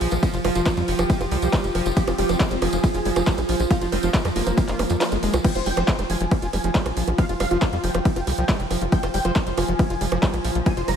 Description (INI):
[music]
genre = psychedelic trance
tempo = 138 BPM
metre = 4/4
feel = straight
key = F minor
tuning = A4 = 440 Hz
[part]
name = supersaw stab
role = melody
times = 0.0-10.9 s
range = F3 to Bb5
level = -29 LUFS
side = equal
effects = phaser, sidechain pumping, analog delay
[part]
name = pulsing gated texture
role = sustained chords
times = 0.0-11.0 s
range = F3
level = -27 LUFS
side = right 3 dB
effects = chorus, built-in reverb, sidechain pumping
[part]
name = overdriven acid bass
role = riff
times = 0.0-10.9 s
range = F3 to F4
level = -29 LUFS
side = moving between left 5 dB and right 4 dB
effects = distortion, auto-pan, sidechain pumping, analog delay
[part]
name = tight sequencer bass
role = bass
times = 0.0-10.9 s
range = F1 to F2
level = -26 LUFS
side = equal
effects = none
[part]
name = drum and bass drum kit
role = drums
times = 0.0-11.0 s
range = bongos, crash cymbal, handclaps, hi-hat, ride cymbal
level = -28 LUFS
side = right 2 dB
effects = overdrive
[part]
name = tambourine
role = percussion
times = 0.1-5.4 s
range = none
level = -39 LUFS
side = right 2 dB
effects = none
[part]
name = electronic kick drum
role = drums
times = 0.2-10.7 s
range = none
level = -21 LUFS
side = equal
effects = none
[sound]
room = light reverb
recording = none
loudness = -19 LUFS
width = side -8 dB against mid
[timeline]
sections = 0.0-5.4 A section; 5.4-11.0 A section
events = drop 0.0-5.4, 5.4-11.0; kick drops out 5.0-5.4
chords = 0.0 F5